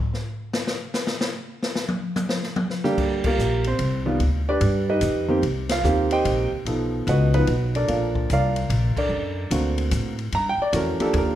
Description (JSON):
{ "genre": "jazz piano trio", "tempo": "147 BPM", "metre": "3/4", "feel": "swing 65% on 8ths", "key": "G minor", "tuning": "A4 = 438 Hz", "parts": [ { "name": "open jazz drum kit", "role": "drums", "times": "0.1-11.3 s", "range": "crash cymbal, hi-hat, kick drum, ride cymbal, snare drum, toms", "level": "-28 LUFS", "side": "left 2 dB", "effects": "none" }, { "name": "warm grand piano", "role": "melody", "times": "2.8-11.4 s", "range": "D3 to Bb5", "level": "-22 LUFS", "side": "right 2 dB", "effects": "none" }, { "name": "upright bass", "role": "bass", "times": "3.0-11.4 s", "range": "G1 to A2", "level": "-23 LUFS", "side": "equal", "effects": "none" } ], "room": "light reverb", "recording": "none", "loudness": "-20 LUFS", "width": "side -12 dB against mid", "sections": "0.0-3.0 A section; 3.0-11.4 B section", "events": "grand piano solo 0.0-3.0; drum solo 0.0-3.0; band accent 3.2, 5.6, 8.9", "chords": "0.0 N.C.; 2.6 Gm/D; 3.0 Gm7; 4.2 G7b13; 5.4 Cm7; 6.6 B7#11; 7.9 Bbmaj7; 9.1 D7b13; 10.3 Gm7", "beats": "0.13 | 0.53 0.94 1.35 | 1.75 2.16 2.57 | 2.98 3.38 3.79 | 4.20 4.61 5.01 | 5.42 5.83 6.24 | 6.65 7.05 7.46 | 7.87 8.28 8.69 | 9.10 9.50 9.91 | 10.32 10.73 11.14" }